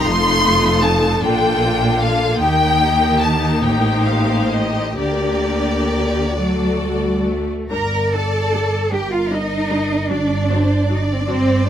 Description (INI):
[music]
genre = classical, slow romantic movement for string orchestra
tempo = 42-54 BPM (dotted quarters)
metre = 6/8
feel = rubato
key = G minor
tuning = A4 = 440 Hz
[part]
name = rich studio violin section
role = melody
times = 0.0-11.7 s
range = Bb4 to C6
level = -21 LUFS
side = left 2 dB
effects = none
[part]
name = rich studio violin section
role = second line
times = 0.0-11.7 s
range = F4 to Bb5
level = -24 LUFS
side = equal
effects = none
[part]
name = rich studio viola section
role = accompaniment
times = 0.0-11.7 s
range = F#3 to G4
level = -22 LUFS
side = left 2 dB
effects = none
[part]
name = rich studio double bass section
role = bass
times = 0.1-11.7 s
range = F1 to Eb2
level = -22 LUFS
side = right 1 dB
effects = none
[part]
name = warm studio cello section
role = bass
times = 0.1-11.7 s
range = F2 to Bb4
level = -21 LUFS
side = right 1 dB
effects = none
[sound]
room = little or no reverb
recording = close, detailed microphones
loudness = -15 LUFS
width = side -10 dB against mid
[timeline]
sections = 0.0-7.7 A section; 7.7-11.7 B section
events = none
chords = 0.1 F7; 1.2 Bb; 2.4 Eb; 3.6 Am7b5; 5.0 Gm/D; 6.4 D; 7.7 Gm; 10.1 D/G